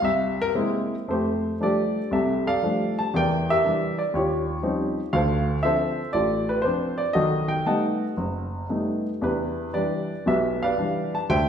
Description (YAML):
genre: solo jazz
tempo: 118 BPM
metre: 4/4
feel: swing 69% on 8ths, rubato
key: unclear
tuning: A4 = 439 Hz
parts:
  - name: warm baby grand piano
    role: solo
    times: 0.0-11.5 s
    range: F#1 to A5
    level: -22 LUFS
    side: equal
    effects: none
room: wet recital hall reverb, RT60 1.3 s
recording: recorded in a church or concert hall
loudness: -22 LUFS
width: side -8 dB against mid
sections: 0.0-1.1 A section; 1.1-11.5 B section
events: grand piano solo 0.0-1.1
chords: 0.0 Caug7; 1.1 F69; 3.1 Em7b5; 4.1 Eb13; 5.1 Dm7; 7.2 B7b13; 9.2 Em7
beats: 0.02 0.56 | 1.09 1.61 2.12 2.63 | 3.14 3.64 4.14 4.63 | 5.13 5.64 6.14 6.65 | 7.16 7.67 8.18 8.70 | 9.23 9.74 10.26 10.78 | 11.30